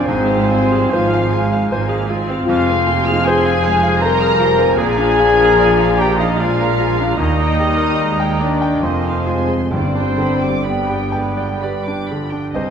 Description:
classical; 60-80 BPM; 3/4; rubato; A4 = 438 Hz
clear concert grand piano; melody; 0.0-12.7 s; Bb1 to Bb5; -21 LUFS; equal
muted studio violin section; melody; 0.0-12.7 s; D5 to F6; -29 LUFS; left 1 dB
mellow clarinet; second line; 0.0-12.2 s; C5 to Eb5; -30 LUFS; left 1 dB
mellow small flute group; second line; 0.0-12.2 s; G5 to Bb5; -28 LUFS; right 2 dB
muted studio violin section; second line; 0.0-12.7 s; C4 to Bb5; -27 LUFS; equal
muted studio viola section; accompaniment; 0.0-12.7 s; F3 to G4; -26 LUFS; equal
warm bassoon; accompaniment; 0.0-12.2 s; F3 to G3; -28 LUFS; right 3 dB
mellow French horn section; sustained chords; 0.0-12.1 s; B3 to Bb4; -19 LUFS; left 5 dB
dark trumpet section; stabs; 0.0-12.1 s; B4 to Bb5; -22 LUFS; left 2 dB
dark cor anglais; second line; 0.1-12.1 s; B3 to Bb4; -26 LUFS; right 3 dB
mellow tuba; bass; 0.1-12.3 s; F1 to Eb2; -26 LUFS; right 5 dB
muted studio cello section; bass; 0.1-12.7 s; C2 to Bb2; -27 LUFS; right 4 dB
muted studio double bass section; bass; 0.1-12.7 s; F1 to Eb2; -25 LUFS; right 4 dB
timpani; percussion; 9.7-11.1 s; G2; -26 LUFS; right 1 dB
moderate scoring stage reverb, RT60 1.8 s; -13 LUFS; side -7 dB against mid
0.0-12.5 A section
0.1 Fm/Ab; 2.5 Fm; 4.8 Bb7; 7.2 Eb; 8.8 Fm7; 9.7 G

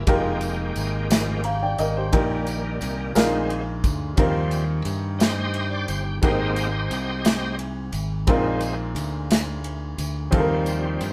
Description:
slow gospel; 59 BPM (dotted quarters); 6/8; straight; Eb major; A4 = 440 Hz
clear upright piano; accompaniment; 0.0-11.1 s; Ab2 to Bb5; -29 LUFS; equal
bright tonewheel organ; sustained chords; 0.0-11.1 s; Eb3 to Eb5; -32 LUFS; equal; slow rotary speaker, overdrive, chorus vibrato
modern bright fingered electric bass; bass; 0.0-11.1 s; F1 to G2; -30 LUFS; equal
modern studio drum kit; drums; 0.1-11.1 s; kick drum, ride cymbal, snare drum; -28 LUFS; equal
tambourine; percussion; 0.4-11.1 s; -41 LUFS; equal
moderate studio reverb, RT60 0.6 s; band playing live in one room; -24 LUFS; mono
0.0-11.1 A section
tonewheel organ solo 0.0-11.1
0.1 Fm11; 2.1 Eb/Bb; 3.2 Bb7sus4; 4.2 Eb69; 6.2 Abmaj9; 8.3 Bb9sus4; 10.3 Eb69

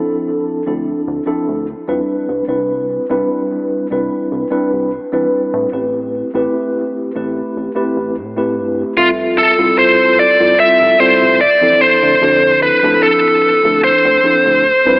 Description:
vaporwave; 74 BPM; 4/4; straight; A4 = 440 Hz
mellow tine electric piano; accompaniment; 0.0-15.0 s; F3 to E5; -16 LUFS; equal; medium stereo tremolo, lush chorus, analog delay
chorused synth bass; bass; 0.7-15.0 s; F1 to A2; -26 LUFS; equal
smooth overdriven lead guitar; melody; 9.0-15.0 s; F4 to E5; -9 LUFS; equal; tape echo
moderate huge ambient reverb, RT60 3.7 s; cassette tape, AM radio sound; -11 LUFS; side -36 dB against mid
0.0-15.0 A section
0.0 Dm9; 2.1 Cmaj9; 5.7 Am7; 9.0 Fmaj7; 11.8 Dm9

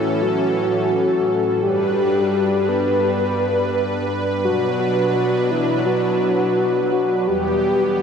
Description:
synthwave; 85 BPM; 4/4; straight; B minor; A4 = 440 Hz
soft octave-layered synth lead; melody; 0.0-8.0 s; E4 to B4; -19 LUFS; left 1 dB; chorus, analog delay
lush unison pad; sustained chords; 0.0-8.0 s; E2 to B4; -21 LUFS; right 1 dB; chorus
wet huge ambient reverb, RT60 7.7 s; dreamy mix soaked in reverb; -17 LUFS; side -6 dB against mid
0.0-8.0 A section
0.0 A; 1.6 G; 4.4 Bm; 7.3 Em

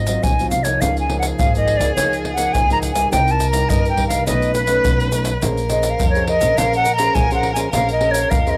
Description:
samba and choro; 104 BPM; 4/4; straight; Bb minor; A4 = 440 Hz
breathy silver concert flute; melody; 0.0-8.6 s; B4 to Bb5; -21 LUFS; equal; cassette tape, tape echo
nylon-string guitar; accompaniment; 0.0-8.6 s; G2 to C5; -28 LUFS; equal; cassette tape
upright bass; bass; 0.0-8.6 s; Ab1 to G2; -25 LUFS; equal
egg shaker, pandeiro and surdo; percussion; 0.1-8.6 s; -24 LUFS; equal
rich violin; second line; 0.8-8.6 s; Ab4 to B4; -27 LUFS; equal; cassette tape
moderate booth ambience, RT60 0.2 s; home recording on cassette; -18 LUFS; mono
0.0-8.6 A section
0.0 Ab13; 0.8 Db69; 3.1 Cm7; 4.3 B9; 5.4 Bbm9

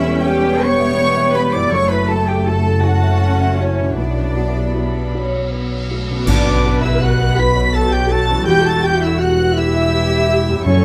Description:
cinematic, emotional film score for orchestra; 54 BPM (dotted quarters); 6/8; uneven beats, rubato; B minor; A4 = 440 Hz
warm studio violin section; melody; 0.0-10.8 s; G5 to B6; -27 LUFS; equal
silver concert flute; second line; 0.0-10.8 s; C#5 to D6; -27 LUFS; equal
warm symphonic violin section; second line; 0.0-10.8 s; C#5 to D6; -28 LUFS; equal
dark symphonic viola section; accompaniment; 0.0-10.8 s; A3 to B4; -26 LUFS; equal
felt-muted upright piano; accompaniment; 0.0-10.8 s; B1 to E5; -26 LUFS; equal
mellow French horn section; sustained chords; 0.0-10.8 s; F#3 to C#5; -25 LUFS; equal
concert harp; arpeggios; 0.0-10.8 s; E2 to B4; -30 LUFS; equal
dark symphonic double bass section; bass; 0.0-10.8 s; E1 to B1; -22 LUFS; equal
warm symphonic cello section; bass; 0.0-10.8 s; E2 to D5; -24 LUFS; equal
cymbal swell, clash cymbals and concert bass drum; percussion; 1.7-7.7 s; -25 LUFS; equal
clear clarinet; second line; 6.3-10.8 s; C#4 to B4; -27 LUFS; equal
timpani; percussion; 10.7-10.8 s; F#2; -18 LUFS; equal
light reverb; close, detailed microphones; -16 LUFS; mono
0.0-6.3 A section; 6.3-10.8 B section
band accent 6.3-7.0
0.0 Em; 1.7 F#m7; 4.0 Bmadd9; 8.5 Em

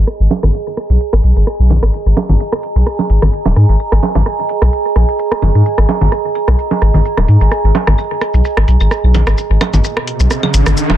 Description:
minimal techno; 129 BPM; 4/4; swing 54% on 16ths; A4 = 440 Hz
saturated sub bass; bass; 0.0-11.0 s; D#1 to G#2; -10 LUFS; equal
pulsing gated texture; texture; 0.3-11.0 s; G#5; -26 LUFS; right 1 dB; chorus, built-in reverb
warbly tape-like pad; texture; 0.0-11.0 s; G#4 to A#5; -20 LUFS; right 5 dB; chorus, built-in reverb
electronic shaker and hi-hat; drums; 0.1-10.9 s; -26 LUFS; left 2 dB; soft clipping on snare
electronic rim click, bongos, congas and claves; percussion; 0.1-11.0 s; -18 LUFS; right 2 dB; soft clipping on snare, ping-pong delay
riser; sound effects; 9.9-11.0 s; -19 LUFS; equal
little or no reverb; dense, heavily limited modern master, low-pass filter; -10 LUFS; side -12 dB against mid
0.0-11.0 A section
filter sweep 0.0-11.0; riser 9.9-11.0
0.0 G#5

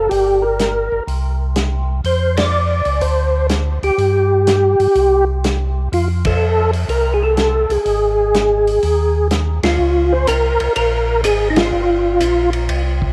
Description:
soul jazz organ trio; 124 BPM; 4/4; swing 68% on 8ths; Db major from 9.8 s; A4 = 440 Hz
percussive tonewheel organ; melody; 0.0-12.5 s; Eb4 to D5; -18 LUFS; equal; slow rotary speaker, chorus vibrato, tape echo
tonewheel organ; bass; 0.0-13.1 s; G1 to G2; -21 LUFS; equal; chorus vibrato, slow rotary speaker
warm soul drum kit; drums; 0.1-13.1 s; hi-hat, kick drum, ride cymbal, snare drum; -26 LUFS; equal
light reverb, small room ambience; -16 LUFS; mono
0.0-9.8 A section; 9.8-13.1 B section
band accent 2.3, 6.2, 9.6, 11.5
0.1 Gm; 1.1 N.C.; 2.1 Dmmaj7; 3.0 D7sus4; 4.0 N.C.; 5.9 F; 7.9 Ab5; 9.8 Db5; 11.7 Gm7

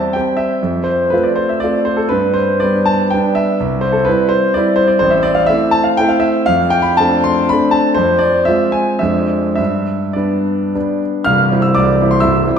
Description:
classical, romantic triple-time dance for piano with dotted rhythms; 99-133 BPM; 3/4; rubato; C major; A4 = 440 Hz
clear grand piano; solo; 0.0-12.6 s; C1 to F6; -12 LUFS; equal
wet scoring stage reverb, RT60 1.6 s; minimal, uncompressed stereo recording; -12 LUFS; side -7 dB against mid
0.0-11.3 A section; 11.3-12.6 B section
0.0 C/E; 0.6 F; 2.1 G; 3.6 C; 5.0 Am; 6.5 F6; 8.0 Fm; 9.6 G; 11.3 C

